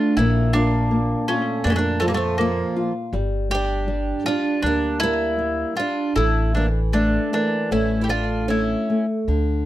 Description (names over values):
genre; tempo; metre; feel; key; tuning
fado-style ballad; 80 BPM; 4/4; rubato; unclear; A4 = 440 Hz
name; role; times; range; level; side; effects
bowl-back mandolin; melody; 0.0-9.1 s; A3 to G4; -24 LUFS; left 1 dB; slapback echo
picked twelve-string acoustic guitar; second line; 0.0-9.0 s; F3 to E4; -25 LUFS; right 5 dB; none
nylon-string guitar; accompaniment; 0.0-9.7 s; Bb2 to A4; -24 LUFS; left 2 dB; none
upright bass; bass; 0.2-9.7 s; G1 to F2; -24 LUFS; equal; none
room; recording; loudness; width
light reverb; dry, close 1970s-style studio recording; -19 LUFS; side -14 dB against mid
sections
0.0-9.7 A section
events
none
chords
0.2 Bb; 3.1 Gm; 6.2 A5; 7.7 A(b13)